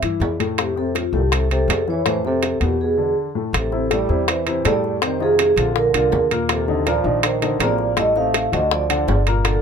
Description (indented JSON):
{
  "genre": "Afro-Cuban jazz",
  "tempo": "162 BPM",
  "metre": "4/4",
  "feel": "straight",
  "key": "unclear",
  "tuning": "A4 = 440 Hz",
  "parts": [
    { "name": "warm baby grand piano", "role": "accompaniment", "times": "0.0-9.6 s", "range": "A2 to F#5", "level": "-23 LUFS", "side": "left 5 dB", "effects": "none" },
    { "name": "upright bass", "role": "bass", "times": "0.0-9.6 s", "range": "G1 to G2", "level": "-24 LUFS", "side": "equal", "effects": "none" },
    { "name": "bongos", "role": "percussion", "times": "0.0-9.6 s", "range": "none", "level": "-25 LUFS", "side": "left 11 dB", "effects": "none" },
    { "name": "timbales", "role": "percussion", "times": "0.0-9.6 s", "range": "none", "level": "-24 LUFS", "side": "right 7 dB", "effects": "none" },
    { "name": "vibraphone with medium mallets", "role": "melody", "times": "0.6-9.6 s", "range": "F4 to F5", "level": "-21 LUFS", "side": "right 2 dB", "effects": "none" },
    { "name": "clear trombone", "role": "second line", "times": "0.6-9.6 s", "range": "A2 to A3", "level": "-27 LUFS", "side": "right 6 dB", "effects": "none" }
  ],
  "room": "light reverb",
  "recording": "minimal, uncompressed stereo recording",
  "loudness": "-17 LUFS",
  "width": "side -7 dB against mid",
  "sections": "0.0-3.5 A section; 3.5-9.6 B section",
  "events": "none",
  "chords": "0.0 C (rootless); 0.6 Fmaj7; 2.8 E7; 3.5 Am7; 5.0 Bbadd9; 6.5 Ebsus2; 8.0 Adim; 8.7 Daug",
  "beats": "0.21 | 0.58 0.95 1.32 1.69 | 2.06 2.43 2.80 3.17 | 3.54 3.91 4.28 4.65 | 5.02 5.39 5.75 6.12 | 6.49 6.86 7.23 7.60 | 7.97 8.34 8.71 9.08 | 9.45"
}